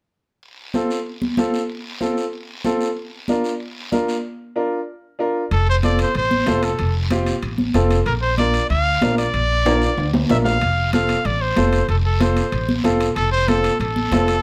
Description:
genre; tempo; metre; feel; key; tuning
latin, cumbia; 188 BPM; 4/4; straight; F major; A4 = 440 Hz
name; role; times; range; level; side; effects
guiro; percussion; 0.4-14.4 s; none; -37 LUFS; equal; none
bright upright piano; accompaniment; 0.7-14.3 s; C4 to Bb4; -25 LUFS; equal; none
congas; percussion; 0.7-14.3 s; none; -26 LUFS; equal; none
bright trumpet; melody; 5.5-14.4 s; A4 to F5; -24 LUFS; equal; plate reverb
upright bass; bass; 5.5-14.4 s; F1 to D2; -23 LUFS; equal; none
timbales; percussion; 5.5-14.4 s; none; -31 LUFS; equal; none
room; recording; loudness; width
moderate studio reverb, RT60 0.7 s; none; -20 LUFS; mono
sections
0.4-5.5 A section; 5.5-14.4 B section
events
drum fill 9.7-10.6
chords
0.4 F; 3.0 Bb; 5.5 F; 8.1 Bb; 10.6 F

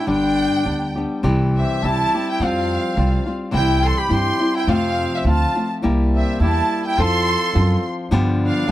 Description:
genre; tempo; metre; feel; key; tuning
mexican folk, mariachi; 105 BPM; 2/4; swing 53% on 8ths, rubato; C major; A4 = 440 Hz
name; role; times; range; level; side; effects
rich studio violin section; melody; 0.0-8.7 s; E5 to C6; -23 LUFS; equal; tape echo
clear trumpet; second line; 0.0-8.7 s; C4 to A4; -26 LUFS; right 4 dB; none
flamenco guitar; accompaniment; 0.0-8.7 s; F2 to A4; -21 LUFS; left 2 dB; none
upright bass; bass; 0.1-8.7 s; G1 to G2; -20 LUFS; right 1 dB; none
room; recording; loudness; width
light reverb; dry, close 1970s-style studio recording; -16 LUFS; side -14 dB against mid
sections
0.0-1.2 A section; 1.2-8.7 B section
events
none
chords
0.1 G; 1.2 C; 2.4 Fsus2; 3.5 C; 4.7 F; 5.8 C7; 7.0 F; 8.1 G7

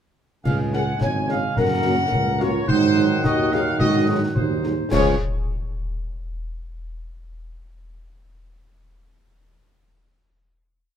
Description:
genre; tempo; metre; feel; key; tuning
military-style march for wind band; 108 BPM; 2/4; straight; Db major; A4 = 440 Hz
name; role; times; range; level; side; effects
warm trumpet section; melody; 0.4-5.1 s; C5 to Ab5; -26 LUFS; equal; none
mellow tuba; bass; 0.4-5.1 s; Ab1 to Ab2; -23 LUFS; right 3 dB; none
mellow hollow large flute ensemble; second line; 0.5-5.2 s; Eb4 to Db5; -26 LUFS; right 1 dB; none
mellow woodwind section; second line; 0.5-5.1 s; Db4 to Bb5; -29 LUFS; equal; none
clear trombone section; sustained chords; 0.5-5.1 s; Db3 to Bb3; -28 LUFS; right 2 dB; none
clash cymbals, concert bass drum and concert snare drum; drums; 0.5-5.2 s; none; -26 LUFS; left 1 dB; none
mellow French horn section; accompaniment; 0.7-5.1 s; F3 to Ab4; -26 LUFS; left 4 dB; none
room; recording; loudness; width
light reverb; heard from further back in the room; -18 LUFS; side -8 dB against mid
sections
0.5-4.9 A section; 4.9-6.0 final chord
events
none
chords
0.5 Db5; 1.6 Gb; 2.7 Ab7; 4.9 Db

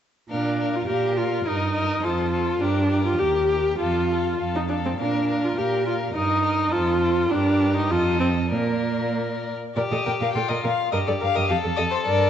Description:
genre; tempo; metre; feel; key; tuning
quick classical-period movement for string quartet; 95-106 BPM; 2/4; rubato; Bb major; A4 = 440 Hz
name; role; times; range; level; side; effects
warm violin; melody; 0.3-12.3 s; Bb4 to G5; -28 LUFS; left 7 dB; none
rich violin; second line; 0.3-12.3 s; F4 to Bb4; -30 LUFS; left 3 dB; none
warm viola; accompaniment; 0.3-12.3 s; Bb3 to Bb4; -23 LUFS; equal; none
rich cello; bass; 0.3-12.3 s; Eb2 to Bb2; -27 LUFS; right 3 dB; none
room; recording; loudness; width
moderate scoring stage reverb, RT60 1.6 s; nothing above 8.0 kHz; -21 LUFS; side -9 dB against mid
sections
0.3-9.8 A section; 9.8-12.3 B section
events
none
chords
0.3 Bb5; 1.5 Eb/G; 2.0 F; 2.6 Gm; 3.2 Eb; 3.8 F; 5.0 Bb5; 6.1 Eb/G; 6.7 F; 7.3 Gm; 7.9 F7; 8.5 Bb; 9.8 Bb5; 10.9 Gm9; 11.5 F

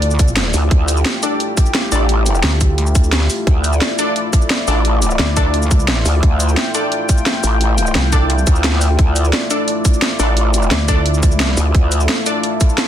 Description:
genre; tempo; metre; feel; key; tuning
dark technical drum and bass; 174 BPM; 4/4; straight; D minor; A4 = 440 Hz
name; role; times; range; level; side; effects
dark analog pad; sustained chords; 0.0-12.9 s; A3 to G5; -21 LUFS; left 1 dB; chorus, sidechain pumping
pulsing pluck wobble bass; bass; 0.0-8.5, 10.7-11.6 s; C2 to D2; -16 LUFS; equal; chorus
drum and bass drum kit; drums; 0.0-12.8 s; cabasa, hi-hat, snare drum; -19 LUFS; equal; studio reverb
electronic kick drum; drums; 0.2-12.7 s; none; -13 LUFS; equal; overdrive, studio reverb
growl bass; bass; 0.5-12.1 s; A1 to D2; -15 LUFS; equal; chorus, sidechain pumping
orchestra-hit-like synth stab; stabs; 1.2-12.9 s; D4 to D5; -23 LUFS; left 1 dB; built-in reverb, dub echo
room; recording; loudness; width
light reverb, digital ambience; dense, heavily limited modern master; -13 LUFS; side -10 dB against mid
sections
0.0-12.9 A section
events
none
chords
0.0 Dmadd9

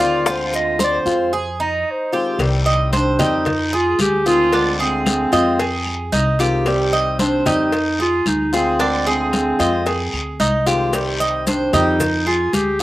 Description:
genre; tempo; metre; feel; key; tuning
latin, Cuban son and guajira; 112 BPM; 4/4; straight; unclear; A4 = 440 Hz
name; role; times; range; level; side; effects
dark clarinet; melody; 0.0-12.8 s; C4 to Eb5; -19 LUFS; equal; none
picked acoustic archtop guitar; accompaniment; 0.0-12.8 s; C3 to G4; -21 LUFS; left 3 dB; none
Cuban tres; arpeggios; 0.0-12.8 s; D4 to Eb5; -21 LUFS; right 3 dB; none
upright bass; bass; 0.0-12.8 s; C2 to F2; -24 LUFS; equal; none
congas; percussion; 0.0-12.8 s; none; -25 LUFS; left 1 dB; none
bongos and cowbell; percussion; 0.3-12.8 s; none; -27 LUFS; left 5 dB; none
guiro; percussion; 0.3-12.8 s; none; -28 LUFS; left 3 dB; none
maracas; percussion; 0.3-1.3, 10.9-12.8 s; none; -32 LUFS; right 3 dB; none
claves; percussion; 0.8-12.8 s; none; -34 LUFS; right 2 dB; none
room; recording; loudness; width
little or no reverb; recorded outdoors, with no room sound; -15 LUFS; side -16 dB against mid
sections
0.0-2.4 A section; 2.4-12.8 B section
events
clarinet solo 0.0-2.4; break 1.3-2.4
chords
0.3 Dm7b5; 1.3 Fm7; 2.4 Cm; 3.5 Dm7b5; 5.6 Fm7; 6.7 Cm; 7.7 Dm7b5; 9.9 Fm7; 10.9 Cm; 12.0 Ddim

